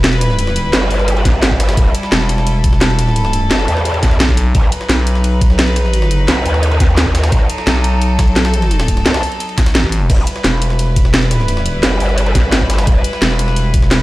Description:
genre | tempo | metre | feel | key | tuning
dark technical drum and bass | 173 BPM | 4/4 | straight | E harmonic minor | A4 = 439 Hz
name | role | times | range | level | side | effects
rich chamber string section | sustained chords | 0.0-14.0 s | F#3 to B4 | -21 LUFS | left 1 dB | sidechain pumping
growling FM bass | bass | 0.0-14.0 s | E1 to B1 | -14 LUFS | equal | none
drum and bass drum kit | drums | 0.0-14.0 s | crash cymbal, hi-hat, snare drum | -16 LUFS | equal | none
jungle sampler-style drum kit | drums | 0.0-14.0 s | ride cymbal, snare drum | -27 LUFS | equal | high-pass filter on cymbals, high-pass filter on snare
growl bass | bass | 0.7-13.0 s | E1 to E2 | -15 LUFS | equal | chorus, overdrive
electronic kick drum | drums | 1.3-13.8 s | none | -13 LUFS | equal | none
room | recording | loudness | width
digital ambience | played on a big sound system in a bare room, stone room reverb | -11 LUFS | side -18 dB against mid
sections
0.0-14.0 A section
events
none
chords
0.0 Em; 4.5 B; 10.1 Em

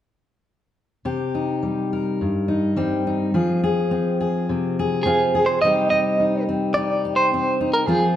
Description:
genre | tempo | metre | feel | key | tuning
folk | 106 BPM | 4/4 | straight | C minor | A4 = 440 Hz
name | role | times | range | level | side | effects
fingerpicked steel-string acoustic guitar | accompaniment | 1.1-8.2 s | G2 to Bb4 | -20 LUFS | left 1 dB | none
clean electric guitar | melody | 5.0-8.2 s | Ab4 to Eb5 | -19 LUFS | right 1 dB | tremolo
room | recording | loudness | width
moderate large studio reverb, RT60 1.4 s | dark, warm production | -19 LUFS | side -11 dB against mid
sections
1.1-5.6 A section; 5.6-8.2 B section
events
none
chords
1.1 Cm; 3.3 Fm; 5.6 Cm

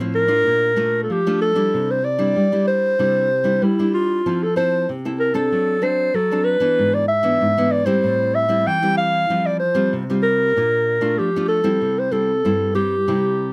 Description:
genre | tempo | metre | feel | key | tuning
samba | 95 BPM | 4/4 | straight | unclear | A4 = 440 Hz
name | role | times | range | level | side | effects
nylon-string guitar | accompaniment | 0.0-13.5 s | G2 to A4 | -24 LUFS | equal | none
dark clarinet | melody | 0.2-13.5 s | E4 to G5 | -20 LUFS | equal | none
room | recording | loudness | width
moderate booth ambience, RT60 0.3 s | none | -19 LUFS | mono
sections
0.0-13.5 A section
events
none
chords
0.5 Bbmaj7; 1.7 Cadd9; 4.3 Fmaj7; 5.5 D7/F#; 6.8 E7/G#; 8.0 Am7; 9.3 Fsus2; 10.6 Bbmaj7; 11.8 C

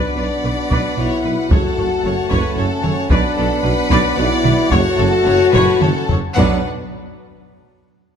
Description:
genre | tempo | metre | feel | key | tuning
cinematic, epic orchestral film score | 111 BPM | 3/4 | straight | B minor | A4 = 440 Hz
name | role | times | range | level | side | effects
rich chamber violin section | melody | 0.0-6.7 s | A4 to F#5 | -25 LUFS | left 4 dB | none
clear symphonic violin section | second line | 0.0-6.7 s | B4 to B5 | -26 LUFS | left 3 dB | none
clear symphonic viola section | accompaniment | 0.0-6.7 s | D4 to D5 | -25 LUFS | equal | none
clear trombone section | sustained chords | 0.0-6.6 s | F#3 to D4 | -26 LUFS | right 6 dB | none
mellow French horn section | sustained chords | 0.0-6.6 s | B3 to F#4 | -19 LUFS | left 4 dB | none
dark tuba | bass | 0.2-6.6 s | F#1 to B1 | -25 LUFS | right 5 dB | none
rich symphonic cello section | bass | 0.2-6.7 s | F#2 to B2 | -24 LUFS | right 2 dB | none
rich symphonic double bass section | bass | 0.2-6.7 s | F#1 to B1 | -23 LUFS | right 3 dB | none
taiko ensemble | drums | 0.7-6.5 s | none | -19 LUFS | equal | none
room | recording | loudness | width
moderate scoring stage reverb, RT60 2.0 s | none | -14 LUFS | side -7 dB against mid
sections
0.0-6.4 A section; 6.4-8.1 B section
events
drum fill 5.5-6.4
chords
0.0 Bm; 1.5 F#m; 3.1 Bm; 4.7 F#m; 6.4 Bm

